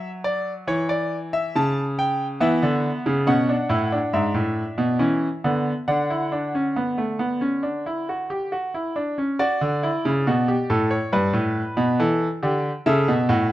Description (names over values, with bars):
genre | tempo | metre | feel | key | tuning
classical, baroque-style 3-part fugue for grand piano | 69 BPM | 4/4 | straight | D major | A4 = 440 Hz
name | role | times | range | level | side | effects
bright concert grand piano | solo | 0.0-13.5 s | G2 to A5 | -20 LUFS | equal | none
room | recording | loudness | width
moderate large studio reverb, RT60 1.1 s | dark, warm production | -20 LUFS | side -14 dB against mid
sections
0.0-9.4 A section; 9.4-13.5 B section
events
none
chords
0.0 D/F#; 0.7 C#dim/E; 2.4 E5; 4.1 E7/G#; 5.0 Bmadd11; 5.9 D; 11.1 Em7/G; 12.9 A